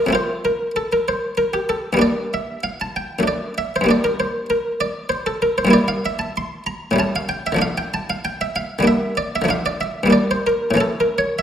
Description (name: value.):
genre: classical, baroque-style suite movement for harpsichord.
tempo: 95 BPM.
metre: 3/4.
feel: rubato.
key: D minor from 5.7 s.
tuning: A4 = 440 Hz.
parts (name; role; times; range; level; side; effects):
buff-stop harpsichord; solo; 0.0-11.4 s; F2 to C6; -18 LUFS; equal; none.
room: wet recital hall reverb, RT60 1.4 s.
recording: none.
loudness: -18 LUFS.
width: side -9 dB against mid.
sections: 0.0-11.4 A section.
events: none.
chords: 0.1 F; 2.0 Gm; 3.3 D/F#; 3.9 Gm; 5.7 Edim/G; 7.0 A7; 7.6 Dm; 10.2 Gm; 10.8 A.